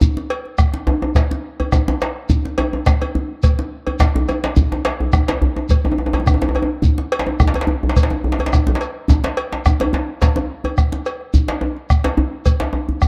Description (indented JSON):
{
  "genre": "west african traditional, West African drum ensemble",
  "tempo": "106 BPM",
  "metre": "4/4",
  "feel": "swing 54% on 16ths",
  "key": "none",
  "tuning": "none",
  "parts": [
    { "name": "bombo", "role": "percussion", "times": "0.0-13.1 s", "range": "none", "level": "-18 LUFS", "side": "equal", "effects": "none" },
    { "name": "djembe", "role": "percussion", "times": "0.0-13.0 s", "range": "none", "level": "-25 LUFS", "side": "equal", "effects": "none" },
    { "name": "shekere", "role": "percussion", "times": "0.0-13.1 s", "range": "none", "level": "-26 LUFS", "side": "equal", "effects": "none" },
    { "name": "cowbell", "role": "percussion", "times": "0.3-12.6 s", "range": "none", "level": "-29 LUFS", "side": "equal", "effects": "none" },
    { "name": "djembe", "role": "percussion", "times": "0.9-12.9 s", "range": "none", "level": "-23 LUFS", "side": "equal", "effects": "none" }
  ],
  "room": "light reverb, small room ambience",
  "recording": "dark, warm production",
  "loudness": "-18 LUFS",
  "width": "mono",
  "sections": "0.0-13.1 A section",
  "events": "none",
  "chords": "none",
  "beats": "| 0.01 0.58 1.15 1.73 | 2.29 2.87 3.43 4.00 | 4.57 5.14 5.71 6.27 | 6.84 7.40 7.97 8.53 | 9.09 9.65 10.22 10.78 | 11.34 11.90 12.46 13.01"
}